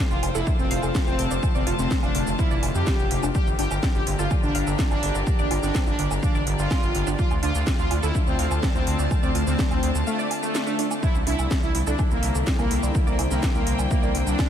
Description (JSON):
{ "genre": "melodic techno", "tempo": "125 BPM", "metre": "4/4", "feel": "straight", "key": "D minor", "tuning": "A4 = 439 Hz", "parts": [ { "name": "evolving wavetable pad", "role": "sustained chords", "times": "0.3-14.5 s", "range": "C3 to G4", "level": "-33 LUFS", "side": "left 2 dB", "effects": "phaser, built-in reverb, sidechain pumping" }, { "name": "tight sequenced synth", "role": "arpeggios", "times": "0.0-14.1 s", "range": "A3 to F5", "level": "-33 LUFS", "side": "right 2 dB", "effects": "chorus, sidechain pumping, diffuse ambient delay" }, { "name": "analog drone", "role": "drone", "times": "0.0-14.5 s", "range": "D3", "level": "-37 LUFS", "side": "equal", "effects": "none" }, { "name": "warm studio string section", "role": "texture", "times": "0.0-14.5 s", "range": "E4 to Bb5", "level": "-34 LUFS", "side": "left 2 dB", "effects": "sidechain pumping" }, { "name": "analog synth brass", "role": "melody", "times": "0.1-14.5 s", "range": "A3 to G4", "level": "-30 LUFS", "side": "equal", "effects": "chorus, sidechain pumping, diffuse ambient delay" }, { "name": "warm studio violin section", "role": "second line", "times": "0.1-14.5 s", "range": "A3 to G4", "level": "-34 LUFS", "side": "equal", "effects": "sidechain pumping, diffuse ambient delay" }, { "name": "gritty driven synth bass", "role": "bass", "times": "0.1-14.3 s", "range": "F1 to F2", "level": "-26 LUFS", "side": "equal", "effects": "tube saturation, sidechain pumping" }, { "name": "techno drum kit", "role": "drums", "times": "0.1-14.5 s", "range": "hi-hat, shaker, snare drum, woodblock", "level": "-31 LUFS", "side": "right 1 dB", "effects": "overdrive, sidechain pumping on cymbals, sidechain pumping on perc, sidechain pumping on hats" }, { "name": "electronic kick drum", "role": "drums", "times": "0.5-14.5 s", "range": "none", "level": "-23 LUFS", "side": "equal", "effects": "overdrive" } ], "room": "light reverb, digital ambience", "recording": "none", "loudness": "-20 LUFS", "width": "side -9 dB against mid", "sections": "0.0-14.5 A section", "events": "break 10.1-11.0", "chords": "0.0 F; 3.3 Gm; 7.2 Dm; 11.0 C" }